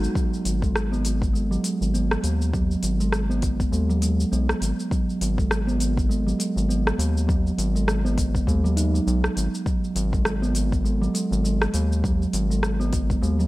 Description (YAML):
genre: organic downtempo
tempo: 101 BPM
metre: 4/4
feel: swing 57% on 16ths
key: G# minor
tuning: A4 = 436 Hz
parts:
  - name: steel tongue drum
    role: arpeggios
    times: 0.0-13.5 s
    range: F#3 to D#4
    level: -25 LUFS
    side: right 2 dB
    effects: tape echo
  - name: round analog bass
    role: bass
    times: 0.0-13.5 s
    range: G#1 to D#2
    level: -24 LUFS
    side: equal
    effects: sidechain pumping
  - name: organic electronic drum kit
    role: drums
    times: 0.0-13.5 s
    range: hi-hat, rim click, shaker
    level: -30 LUFS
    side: equal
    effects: none
  - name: electronic kick drum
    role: drums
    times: 0.2-13.2 s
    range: none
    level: -24 LUFS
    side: equal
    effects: none
room: little or no reverb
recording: none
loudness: -21 LUFS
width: side -18 dB against mid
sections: 0.2-13.5 A section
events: none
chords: 0.2 G#m7